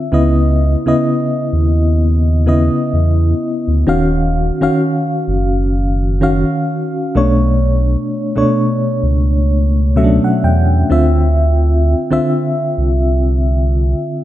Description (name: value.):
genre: contemporary R&B.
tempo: 64 BPM.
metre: 4/4.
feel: swing 58% on 16ths.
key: unclear.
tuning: A4 = 441 Hz.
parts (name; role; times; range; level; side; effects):
FM electric piano with tremolo; accompaniment; 0.0-14.2 s; B2 to G5; -15 LUFS; equal; none.
sub bass with octave; bass; 0.1-13.9 s; Eb1 to Fb2; -13 LUFS; equal; none.
room: light reverb, digital ambience.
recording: none.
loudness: -12 LUFS.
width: side -13 dB against mid.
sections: 0.0-14.2 A section.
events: FM electric piano fill 9.5-11.4.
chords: 0.1 Dbm9; 3.9 Ebm9; 7.2 Bm9; 10.9 Dm9.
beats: | 0.12 1.06 1.99 2.93 | 3.87 4.81 5.74 6.68 | 7.62 8.56 9.49 10.43 | 11.37 12.31 13.24 14.18.